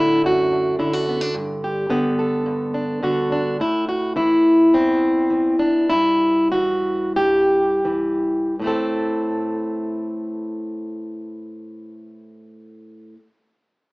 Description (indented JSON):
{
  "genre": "folk, solo fingerstyle acoustic guitar",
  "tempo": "77-109 BPM",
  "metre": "4/4",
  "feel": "rubato",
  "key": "A dorian",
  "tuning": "A4 = 440 Hz",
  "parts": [
    { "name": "fingerpicked plugged-in steel-string acoustic guitar", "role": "solo", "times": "0.0-13.2 s", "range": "E2 to A4", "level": "-18 LUFS", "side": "equal", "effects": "none" }
  ],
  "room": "moderate studio reverb, RT60 0.8 s",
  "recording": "band playing live in one room, AM radio sound",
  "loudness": "-17 LUFS",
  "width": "side -23 dB against mid",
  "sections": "0.0-3.6 A section; 3.6-8.6 B section; 8.6-11.6 C section",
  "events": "slowing down 3.6-8.6",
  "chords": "0.0 Bm7 (rootless); 1.3 G; 3.6 Am; 5.9 Em/G; 8.6 Am",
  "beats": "0.24 0.80 | 1.35 1.90 2.46 3.03 | 3.60 4.16 4.72 5.30 | 5.90 6.52 7.16 7.85 | 8.60 9.37 10.13 10.88"
}